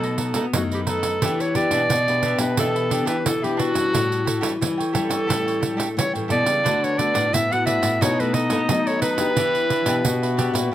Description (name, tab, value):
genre	samba and choro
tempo	88 BPM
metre	4/4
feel	straight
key	unclear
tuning	A4 = 441 Hz
part	clear clarinet	melody	0.0-10.7 s	F#4 to F#5	-23 LUFS	right 1 dB	none
part	cavaquinho	accompaniment	0.0-10.7 s	D4 to G5	-29 LUFS	right 4 dB	none
part	nylon-string guitar	accompaniment	0.0-10.7 s	F#2 to G4	-28 LUFS	left 5 dB	none
part	nylon-string guitar	bass	0.0-10.7 s	A2 to B3	-25 LUFS	left 2 dB	none
part	pandeiro	percussion	0.0-10.7 s	none	-26 LUFS	right 4 dB	none
part	warm trombone	second line	6.7-10.7 s	B3 to F#4	-28 LUFS	left 3 dB	none
room	little or no reverb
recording	close, detailed microphones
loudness	-19 LUFS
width	side -12 dB against mid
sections	0.0-10.7 A section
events	none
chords	0.0 B7; 1.2 Em7; 3.9 A7; 6.7 D6; 8.0 B7; 9.4 Em7